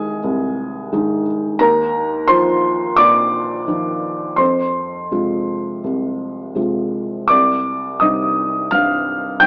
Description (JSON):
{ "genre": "neoclassical minimalist piano", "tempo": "85 BPM", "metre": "4/4", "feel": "rubato", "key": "unclear", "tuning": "A4 = 442 Hz", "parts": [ { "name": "felt-muted upright piano", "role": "solo", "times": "0.0-9.5 s", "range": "C2 to G6", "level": "-18 LUFS", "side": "equal", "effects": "none" } ], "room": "moderate plate reverb, RT60 3.5 s", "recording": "AM radio sound", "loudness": "-18 LUFS", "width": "mono", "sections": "0.0-9.5 A section", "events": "none", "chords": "0.0 Ab/C; 1.6 Ebsus2; 4.4 Fm; 7.3 Cm", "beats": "0.22 0.91 | 1.59 2.28 2.98 3.68 | 4.40 5.12 5.85 6.57 | 7.30 8.01 8.71 9.41" }